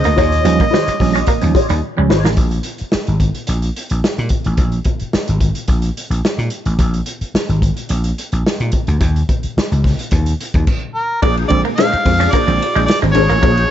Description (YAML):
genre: funk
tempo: 109 BPM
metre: 4/4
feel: straight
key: Bb mixolydian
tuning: A4 = 439 Hz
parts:
  - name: mellow harmonica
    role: melody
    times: 0.0-1.8, 10.9-13.7 s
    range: Bb4 to F5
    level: -18 LUFS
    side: equal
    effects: none
  - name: mellow electric guitar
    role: accompaniment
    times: 0.0-2.3, 11.2-13.7 s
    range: D4 to Eb5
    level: -20 LUFS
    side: left 5 dB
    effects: wah, spring reverb
  - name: barky reed electric piano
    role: stabs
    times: 0.0-2.4, 11.2-13.6 s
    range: Bb2 to Db4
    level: -20 LUFS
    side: right 5 dB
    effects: overdrive, fast tremolo
  - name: vintage drum kit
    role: drums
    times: 0.0-13.7 s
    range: crash cymbal, hi-hat, kick drum, ride cymbal, snare drum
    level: -18 LUFS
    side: equal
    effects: none
  - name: clean electric guitar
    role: riff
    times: 0.1-2.4, 11.2-13.6 s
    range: G3 to Db4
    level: -23 LUFS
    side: right 6 dB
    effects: none
  - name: vintage slap bass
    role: bass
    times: 0.1-13.6 s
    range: Ab1 to Bb2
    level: -16 LUFS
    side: equal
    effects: none
room: little or no reverb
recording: nothing above 7.9 kHz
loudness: -13 LUFS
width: side -11 dB against mid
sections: 0.0-2.4 A section; 2.4-11.2 B section; 11.2-13.7 A section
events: drum fill 1.8-2.4; stop 10.7-11.2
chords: 0.2 Eb9; 2.4 Bb7(no3); 9.0 Dbsus2; 11.2 Bb9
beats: | 0.18 0.73 1.28 1.83 | 2.38 2.93 3.48 4.03 | 4.58 5.13 5.69 6.24 | 6.79 7.35 7.90 8.46 | 9.01 9.57 10.12 10.68 | 11.23 11.78 12.33 12.88 | 13.44